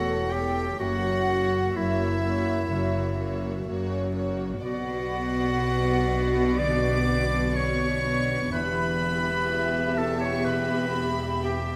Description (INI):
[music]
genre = cinematic, emotional film score for orchestra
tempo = 62 BPM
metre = 4/4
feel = rubato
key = B minor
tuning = A4 = 444 Hz
[part]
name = warm symphonic violin section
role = melody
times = 0.0-11.8 s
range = C#5 to E5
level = -38 LUFS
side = equal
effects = none
[part]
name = clear clarinet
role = second line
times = 0.0-11.8 s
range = E4 to D5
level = -30 LUFS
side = equal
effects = none
[part]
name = warm symphonic violin section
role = second line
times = 0.0-11.8 s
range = E5 to D6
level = -36 LUFS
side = equal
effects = none
[part]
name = dark symphonic viola section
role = accompaniment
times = 0.0-11.8 s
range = A3 to A4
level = -34 LUFS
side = equal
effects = none
[part]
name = concert harp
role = arpeggios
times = 0.0-11.8 s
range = E2 to A4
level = -38 LUFS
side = equal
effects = none
[part]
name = rich symphonic double bass section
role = bass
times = 0.0-11.8 s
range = E1 to B1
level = -35 LUFS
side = equal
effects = none
[part]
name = warm symphonic cello section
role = bass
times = 0.0-11.8 s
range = E2 to B2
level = -32 LUFS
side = equal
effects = none
[sound]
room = light reverb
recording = close, detailed microphones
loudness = -26 LUFS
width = mono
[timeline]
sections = 0.0-11.8 A section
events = none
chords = 0.0 A/E; 0.8 F#; 4.6 Bm; 8.5 Em